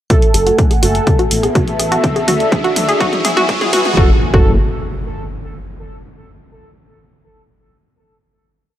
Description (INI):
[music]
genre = melodic techno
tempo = 124 BPM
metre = 4/4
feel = straight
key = F# minor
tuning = A4 = 440 Hz
[part]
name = analog synth brass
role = melody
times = 0.1-4.5 s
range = A3 to A4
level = -20 LUFS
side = right 1 dB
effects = chorus, sidechain pumping, analog delay
[part]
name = dark analog pad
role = sustained chords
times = 0.4-4.2 s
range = A3 to G#5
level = -20 LUFS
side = equal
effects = chorus, vintage 12-bit sampler grit, sidechain pumping
[part]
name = analog pluck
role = arpeggios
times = 0.1-4.6 s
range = F#4 to G#4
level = -18 LUFS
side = equal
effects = chorus, vintage 12-bit sampler grit, sidechain pumping, analog delay
[part]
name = electronic kick drum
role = drums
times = 0.1-4.4 s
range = none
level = -14 LUFS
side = equal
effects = none
[part]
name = punchy analog drum machine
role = drums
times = 0.1-3.9 s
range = hi-hat, toms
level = -20 LUFS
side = equal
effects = none
[part]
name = riser and impact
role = sound effects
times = 1.3-5.9 s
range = none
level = -22 LUFS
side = equal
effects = none
[part]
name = dark detuned saw bass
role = bass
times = 0.3-4.6 s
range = E1 to D2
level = -19 LUFS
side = equal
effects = tube saturation, sidechain pumping
[sound]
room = light reverb, digital ambience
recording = dry, gritty hardware recording, high-pass filter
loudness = -11 LUFS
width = side -12 dB against mid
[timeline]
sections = 0.1-4.0 build; 4.0-5.9 final chord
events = build-up 0.1-4.0; drum fill 0.1-4.0; filter sweep on synth pluck 0.1-4.0; filter sweep 0.1-4.0; riser 1.3-4.0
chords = 0.1 F#madd9; 1.1 Asus2; 2.0 Dsus2; 3.0 E; 4.0 F#madd9